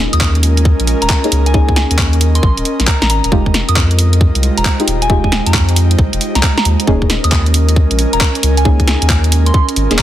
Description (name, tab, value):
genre	UK garage, two-step garage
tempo	135 BPM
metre	4/4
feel	swing 65% on 16ths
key	unclear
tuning	A4 = 439 Hz
part	saturated sub bass	bass	0.0-10.0 s	Eb1 to F2	-13 LUFS	equal	none
part	airy breathy pad	texture	0.0-10.0 s	Ab3 to Ab5	-21 LUFS	right 2 dB	chorus, sidechain pumping
part	soft synth bell	melody	0.1-10.0 s	Ab5 to Eb6	-22 LUFS	equal	chorus, phaser, digital delay
part	garage drum kit	drums	0.1-10.0 s	handclaps, hi-hat, snare drum	-16 LUFS	equal	overdrive, studio ambience
part	electronic kick drum	drums	0.2-10.0 s	none	-14 LUFS	equal	overdrive, studio ambience
part	deep mellow chord stab	stabs	1.2-10.0 s	Ab3 to Ab4	-21 LUFS	equal	chorus, digital delay
part	ethereal airy pad	sustained chords	4.1-10.0 s	Ab3 to C5	-26 LUFS	right 2 dB	ensemble chorus, built-in reverb, sidechain pumping
room	light reverb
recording	dense, heavily limited modern master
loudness	-10 LUFS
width	side -12 dB against mid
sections	0.0-10.0 A section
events	none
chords	0.0 Eb7sus4; 3.3 Fm9; 6.7 Eb7sus4